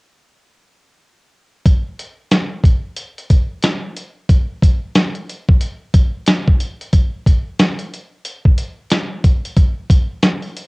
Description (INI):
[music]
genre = hip hop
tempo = 91 BPM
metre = 4/4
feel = swing 62% on 16ths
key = none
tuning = none
[part]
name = dusty soul sampler-style drum kit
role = drums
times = 1.7-10.7 s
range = hi-hat, kick drum, snare drum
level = -13 LUFS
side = equal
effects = cassette tape
[sound]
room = moderate booth ambience, RT60 0.2 s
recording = home recording on cassette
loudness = -14 LUFS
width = side -29 dB against mid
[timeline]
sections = 1.7-4.3 A section; 4.3-10.7 B section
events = none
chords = none